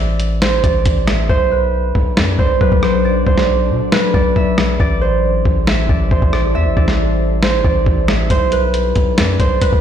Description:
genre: hip hop, trap.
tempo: 137 BPM.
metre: 4/4.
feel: half-time.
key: B phrygian.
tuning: A4 = 438 Hz.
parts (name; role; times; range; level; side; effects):
concert harp; melody; 0.0-9.8 s; B4 to E5; -18 LUFS; right 2 dB; digital delay.
hard-hitting 808-style bass; bass; 0.0-9.8 s; A1 to B2; -17 LUFS; equal; none.
lo-fi sampler-style drum kit; drums; 0.2-9.8 s; hi-hat, kick drum, rim click, snare drum; -16 LUFS; equal; none.
glassy FM pad; sustained chords; 2.1-9.8 s; F#3 to D5; -22 LUFS; left 3 dB; ensemble chorus, built-in reverb.
room: little or no reverb.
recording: played on a big sound system in a bare room, stone room reverb.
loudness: -12 LUFS.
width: side -9 dB against mid.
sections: 0.0-9.8 A section.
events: hi-hats muted 1.3-8.3.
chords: 0.0 Am; 1.3 Bm7; 4.8 Am7; 8.3 Bm7.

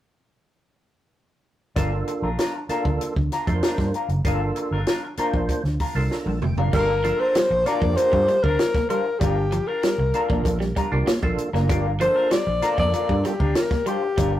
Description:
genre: funk.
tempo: 97 BPM.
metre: 4/4.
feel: straight.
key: G minor.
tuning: A4 = 441 Hz.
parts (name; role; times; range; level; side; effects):
semi-hollow electric guitar; accompaniment; 1.8-14.4 s; D4 to C5; -29 LUFS; left 3 dB; wah.
percussive tonewheel organ; stabs; 1.8-13.3 s; A3 to Bb5; -28 LUFS; right 2 dB; chorus vibrato, slow rotary speaker.
vintage muted fingered electric bass; bass; 1.8-14.4 s; F1 to G2; -24 LUFS; right 1 dB; none.
compact cocktail drum kit; drums; 1.8-14.3 s; crash cymbal, hi-hat, kick drum, snare drum, toms; -25 LUFS; equal; none.
breathy alto saxophone; melody; 6.7-14.4 s; G4 to D5; -22 LUFS; left 2 dB; tape echo.
electric guitar at the edge of break-up; riff; 6.7-14.3 s; F3 to Bb3; -30 LUFS; right 2 dB; none.
room: moderate studio reverb, RT60 0.7 s.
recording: rough rehearsal-room recording, warm saturation.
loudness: -20 LUFS.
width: side -13 dB against mid.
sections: 1.8-6.7 A section; 6.7-14.4 B section.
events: drum fill 6.1-6.7.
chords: 1.8 Gm7.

